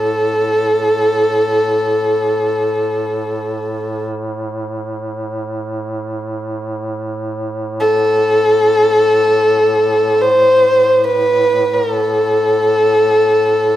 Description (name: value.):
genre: caucasian folk, Caucasian lament.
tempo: free time.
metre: none.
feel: none.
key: A minor.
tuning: A4 = 436 Hz.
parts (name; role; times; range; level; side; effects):
dark violin; melody; 0.0-13.8 s; A4 to C5; -12 LUFS; equal; none.
warm duduk; drone; 0.0-13.8 s; A2; -23 LUFS; equal; none.
room: moderate scoring stage reverb, RT60 1.8 s.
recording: none.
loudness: -13 LUFS.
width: side -12 dB against mid.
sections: 0.0-13.8 A section.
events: none.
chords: none.